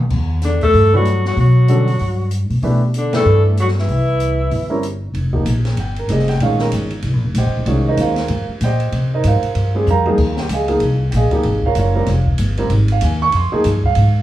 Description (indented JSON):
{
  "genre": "modal jazz",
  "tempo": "191 BPM",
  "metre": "4/4",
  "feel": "swing 60% on 8ths",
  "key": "F minor from 5.1 s",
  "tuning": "A4 = 440 Hz",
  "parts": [
    { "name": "upright bass", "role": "bass", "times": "0.0-14.2 s", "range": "Eb1 to C3", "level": "-16 LUFS", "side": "equal", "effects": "none" },
    { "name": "open jazz drum kit", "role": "drums", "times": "0.1-14.0 s", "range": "crash cymbal, hi-hat, kick drum, ride cymbal, snare drum, toms", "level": "-25 LUFS", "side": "equal", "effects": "none" },
    { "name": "breathy tenor saxophone", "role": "second line", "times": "0.4-4.8 s", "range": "D3 to A3", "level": "-20 LUFS", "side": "right 1 dB", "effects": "none" },
    { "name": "clear alto saxophone", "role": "melody", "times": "0.5-4.8 s", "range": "D4 to A4", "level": "-20 LUFS", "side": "left 4 dB", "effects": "none" },
    { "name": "warm upright piano", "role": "accompaniment", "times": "0.9-14.2 s", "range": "D3 to Db6", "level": "-19 LUFS", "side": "right 2 dB", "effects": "none" }
  ],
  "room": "moderate large studio reverb, RT60 1.1 s",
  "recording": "band playing live in one room, small room ambience",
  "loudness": "-14 LUFS",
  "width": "side -14 dB against mid",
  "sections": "0.0-5.1 A section; 5.1-14.2 B section",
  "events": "band accent 3.1; drum fill 9.9-10.2",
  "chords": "0.1 Em11; 3.9 C; 5.1 F9sus4; 10.2 Eb9sus4"
}